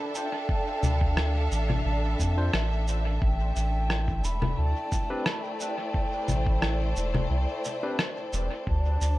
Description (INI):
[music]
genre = ambient dub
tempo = 88 BPM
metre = 4/4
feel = swing 53% on 16ths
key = A minor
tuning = A4 = 439 Hz
[part]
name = mellow hollow wooden flute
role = melody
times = 0.0-9.2 s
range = G5 to B5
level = -36 LUFS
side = right 1 dB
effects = dub echo
[part]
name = dark studio string section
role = sustained chords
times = 0.0-9.2 s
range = A3 to F5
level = -33 LUFS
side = left 1 dB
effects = none
[part]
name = electronic cabasa, congas and rim click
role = drums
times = 0.1-9.2 s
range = none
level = -31 LUFS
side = left 1 dB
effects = dub echo
[part]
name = electronic kick drum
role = drums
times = 0.5-8.8 s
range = none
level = -28 LUFS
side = equal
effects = none
[part]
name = soft dub sub bass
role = bass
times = 0.8-9.2 s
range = E1 to F2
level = -26 LUFS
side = equal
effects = none
[part]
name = barky tine electric piano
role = stabs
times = 2.4-8.0 s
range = C4 to C5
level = -38 LUFS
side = left 1 dB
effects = overdrive, dub echo
[sound]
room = light reverb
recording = echo-heavy mix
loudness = -25 LUFS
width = side -17 dB against mid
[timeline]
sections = 0.0-9.2 A section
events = none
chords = 0.0 Dm; 3.2 Am11; 8.7 D7(no3)